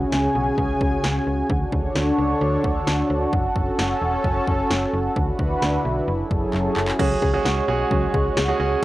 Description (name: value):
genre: synth-pop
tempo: 131 BPM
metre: 4/4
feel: straight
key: unclear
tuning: A4 = 438 Hz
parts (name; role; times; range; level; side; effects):
- lush unison pad; sustained chords; 0.0-8.8 s; C#3 to G#5; -22 LUFS; equal; chorus, cassette tape
- slap-like FM bass; bass; 0.0-8.8 s; E1 to D2; -25 LUFS; equal; none
- punchy analog drum machine; drums; 0.1-8.5 s; crash cymbal, handclaps, kick drum, snare drum; -25 LUFS; equal; cassette tape
- bright grand piano; accompaniment; 7.0-8.8 s; C#4 to G#4; -22 LUFS; right 4 dB; cassette tape
- soft round pluck; arpeggios; 7.0-8.5 s; F#3 to F#5; -28 LUFS; left 5 dB; chorus, cassette tape, tape echo, plate reverb
room: moderate studio reverb, RT60 0.5 s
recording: home recording on cassette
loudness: -19 LUFS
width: side -16 dB against mid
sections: 0.0-7.0 A section; 7.0-8.8 B section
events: drum fill 6.5-7.0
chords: 0.0 C#sus4; 1.5 Dmaj7; 3.3 F#m; 5.2 D6; 6.1 F#m7; 7.0 C#sus4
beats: 0.12 0.58 1.04 | 1.50 1.96 2.41 2.87 | 3.33 3.79 4.25 4.70 | 5.16 5.62 6.08 6.54 | 6.99 7.45 7.91 8.37 | 8.82